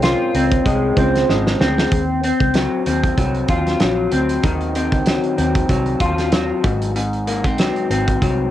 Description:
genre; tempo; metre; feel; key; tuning
indie pop, bedroom pop; 95 BPM; 4/4; swing 55% on 16ths; Eb dorian; A4 = 439 Hz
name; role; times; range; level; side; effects
kalimba; second line; 0.0-1.4 s; C5 to Db5; -26 LUFS; right 8 dB; lush chorus, cassette tape, tape echo
electric guitar through a small old amp; accompaniment; 0.0-8.5 s; Ab2 to F4; -18 LUFS; left 2 dB; lush chorus, warbly pitch drift, cassette tape
reed electric piano; accompaniment; 0.0-1.9 s; Ab3 to C5; -25 LUFS; right 5 dB; cassette tape
vintage muted fingered electric bass; bass; 0.0-8.5 s; Ab1 to Eb2; -23 LUFS; right 1 dB; none
loose indie drum kit; drums; 0.0-8.4 s; hi-hat, kick drum, snare drum; -20 LUFS; right 1 dB; cassette tape
room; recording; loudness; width
light reverb; home recording on cassette; -15 LUFS; side -12 dB against mid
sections
0.0-1.9 A section; 1.9-8.5 B section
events
drum fill 1.3-1.9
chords
0.0 Dbmaj7; 1.9 Ebm69; 6.6 Ab7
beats
0.03 0.66 1.29 | 1.92 2.55 3.18 3.81 | 4.44 5.07 5.70 6.33 | 6.96 7.59 8.22

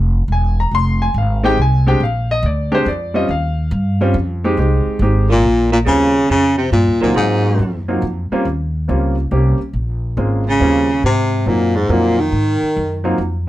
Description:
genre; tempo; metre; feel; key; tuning
jazz, small-group swing and bop; 140 BPM; 3/4; swing 67% on 8ths; Eb mixolydian; A4 = 439 Hz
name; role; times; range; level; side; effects
upright bass; bass; 0.0-13.5 s; E1 to Ab2; -17 LUFS; equal; none
warm concert grand piano; accompaniment; 0.3-13.2 s; Gb3 to C6; -19 LUFS; equal; none
warm baritone saxophone; melody; 5.3-7.8, 10.5-13.1 s; Ab2 to Eb3; -15 LUFS; left 1 dB; none
mellow baritone saxophone; second line; 5.3-7.8, 10.5-13.0 s; Ab2 to Eb3; -22 LUFS; right 4 dB; none
room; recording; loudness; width
light reverb; none; -14 LUFS; side -15 dB against mid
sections
0.0-5.9 A section; 5.9-13.5 B section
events
none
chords
0.3 E; 0.7 Fm; 2.0 Bb69; 3.3 Eb69; 4.6 Abmaj9; 5.4 N.C.; 5.9 Eb13; 7.2 Ab13; 8.5 Eb13; 9.7 Bbm7; 10.6 Eb13; 11.0 Ab13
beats
0.29 | 0.72 1.15 1.57 | 2.00 2.43 2.86 | 3.29 3.72 4.15 | 4.58 5.01 5.44 | 5.87 6.30 6.73 | 7.16 7.59 8.02 | 8.45 8.88 9.31 | 9.74 10.17 10.60 | 11.03 11.46 11.89 | 12.32 12.75 13.19

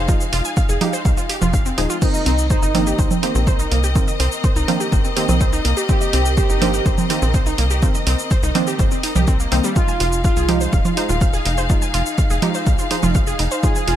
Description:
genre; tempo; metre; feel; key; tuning
melodic techno; 124 BPM; 4/4; straight; F minor; A4 = 438 Hz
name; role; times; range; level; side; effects
rich studio string section; sustained chords; 0.0-14.0 s; C4 to F5; -26 LUFS; left 3 dB; sidechain pumping
wide unison pluck; arpeggios; 0.0-13.9 s; G3 to Ab5; -26 LUFS; equal; sidechain pumping, digital delay
filtered dub chord stab; stabs; 0.0-14.0 s; Eb3 to Eb4; -26 LUFS; right 2 dB; chorus, sidechain pumping, digital delay
tight sequencer bass; bass; 0.0-14.0 s; Eb1 to C2; -20 LUFS; equal; sidechain pumping
electronic kick drum; drums; 0.1-13.7 s; none; -18 LUFS; equal; none
punchy analog drum machine; drums; 0.1-14.0 s; congas, crash cymbal, hi-hat, shaker; -23 LUFS; right 4 dB; none
analog synth brass; melody; 2.0-14.0 s; Eb4 to Ab4; -25 LUFS; right 2 dB; chorus, sidechain pumping, ping-pong delay
room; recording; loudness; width
light reverb, digital ambience; bright 1980s-style digital production; -15 LUFS; side -11 dB against mid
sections
0.0-14.0 A section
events
none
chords
0.0 Fm7; 2.0 Cm7; 9.8 Fm7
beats
| 0.09 0.57 1.05 1.54 | 2.02 2.50 2.99 3.47 | 3.96 4.44 4.92 5.41 | 5.89 6.38 6.86 7.34 | 7.83 8.31 8.79 9.28 | 9.76 10.25 10.73 11.21 | 11.70 12.18 12.67 13.15 | 13.63

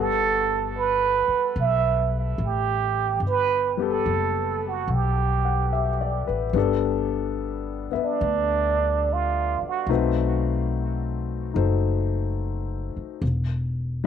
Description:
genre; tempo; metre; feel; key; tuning
jazz ballad; 72 BPM; 4/4; swing 68% on 8ths; G major; A4 = 440 Hz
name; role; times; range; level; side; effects
trumpet with plunger mute; melody; 0.0-9.9 s; D4 to E5; -24 LUFS; right 8 dB; tape echo
warm concert grand piano; accompaniment; 0.0-14.1 s; G3 to F#5; -28 LUFS; left 13 dB; none
upright bass; bass; 0.0-14.1 s; E1 to D2; -26 LUFS; left 1 dB; none
room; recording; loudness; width
light reverb, small room ambience; 1960s-style stereo with parts hard left and right; -22 LUFS; side -8 dB against mid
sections
0.0-6.6 A section; 6.6-14.1 B section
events
muted trumpet solo 6.6-14.1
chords
0.0 Gmaj9; 6.6 Gadd9; 9.9 B7b9; 13.2 N.C.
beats
0.72 1.55 2.38 | 3.22 4.05 4.88 5.72 | 6.55 7.38 8.22 9.05 | 9.89 10.72 11.55 12.39 | 13.22 14.05

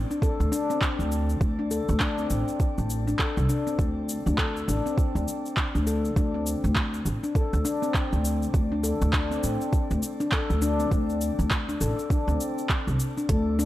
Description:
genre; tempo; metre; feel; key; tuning
organic downtempo; 101 BPM; 4/4; swing 60% on 16ths; unclear; A4 = 440 Hz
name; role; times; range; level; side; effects
upright bass; bass; 0.0-13.7 s; A1 to D2; -26 LUFS; equal; sidechain pumping
handpan; arpeggios; 0.1-13.7 s; C4 to A4; -29 LUFS; left 2 dB; analog delay, shimmer reverb
organic electronic drum kit; drums; 0.1-13.7 s; cabasa, handclaps, hi-hat; -32 LUFS; equal; none
electronic kick drum; drums; 0.2-13.4 s; none; -25 LUFS; right 1 dB; none
room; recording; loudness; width
light reverb, studio ambience; dry, gritty hardware recording; -23 LUFS; side -15 dB against mid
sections
0.0-13.7 A section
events
none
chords
0.0 Asus4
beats
0.23 0.82 | 1.41 2.01 2.60 3.19 | 3.79 4.38 4.98 5.57 | 6.17 6.76 7.35 7.95 | 8.54 9.13 9.73 10.32 | 10.92 11.51 12.11 12.70 | 13.29

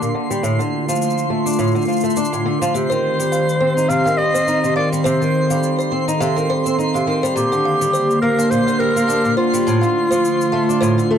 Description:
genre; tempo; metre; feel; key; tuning
folktronica; 104 BPM; 4/4; swing 56% on 16ths; C dorian; A4 = 440 Hz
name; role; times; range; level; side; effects
warbly tape-like pad; sustained chords; 0.0-11.2 s; D3 to A4; -20 LUFS; equal; chorus, built-in reverb
fingerpicked swing-style acoustic guitar; arpeggios; 0.0-11.2 s; A2 to Eb4; -22 LUFS; equal; low-pass filter, tape echo
shaker; drums; 0.0-11.1 s; none; -31 LUFS; left 6 dB; overdrive
twinkling granular texture; texture; 0.0-11.2 s; C6; -28 LUFS; equal; built-in reverb
growling clarinet; melody; 2.7-11.2 s; F4 to F5; -19 LUFS; equal; tape echo
music box; second line; 2.9-11.2 s; A4 to F5; -25 LUFS; right 2 dB; tape echo
room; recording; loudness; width
moderate booth ambience, RT60 0.2 s; dry, close 1970s-style studio recording; -15 LUFS; side -8 dB against mid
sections
0.0-11.2 A section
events
none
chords
0.4 Dm; 2.7 Cm; 7.4 Gm; 9.7 Dm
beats
| 0.43 1.01 1.59 2.16 | 2.74 3.32 3.90 4.47 | 5.05 5.63 6.20 6.78 | 7.36 7.93 8.51 9.09 | 9.66 10.24 10.82

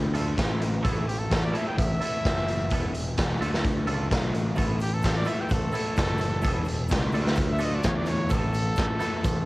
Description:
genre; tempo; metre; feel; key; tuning
indie rock; 128 BPM; 4/4; straight; unclear; A4 = 438 Hz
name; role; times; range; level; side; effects
bright trumpet; melody; 0.0-9.5 s; E4 to G5; -32 LUFS; equal; cassette tape, analog delay
sludgy distorted guitar; riff; 0.0-9.4 s; E2 to D4; -33 LUFS; left 3 dB; overdrive, cassette tape
growling picked electric bass; bass; 0.0-9.5 s; E1 to E2; -28 LUFS; equal; overdrive
twangy electric guitar; riff; 0.1-9.3 s; A3 to A4; -36 LUFS; right 3 dB; analog chorus, cassette tape, analog delay
raw garage drum kit; drums; 0.1-9.4 s; hi-hat, kick drum, snare drum; -27 LUFS; equal; cassette tape
egg shaker; percussion; 4.6-9.3 s; none; -53 LUFS; right 4 dB; none
room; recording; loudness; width
studio ambience; home recording on cassette; -23 LUFS; side -20 dB against mid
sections
0.0-9.5 A section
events
trumpet solo 0.0-9.5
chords
0.0 Dm; 0.8 Asus2; 2.7 Esus4; 3.4 Dm; 4.6 Asus2; 6.4 Esus4; 7.1 Dm; 8.3 Asus2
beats
0.37 | 0.84 1.30 1.77 2.24 | 2.71 3.17 3.64 4.11 | 4.57 5.04 5.51 5.97 | 6.44 6.91 7.37 7.84 | 8.31 8.77 9.24

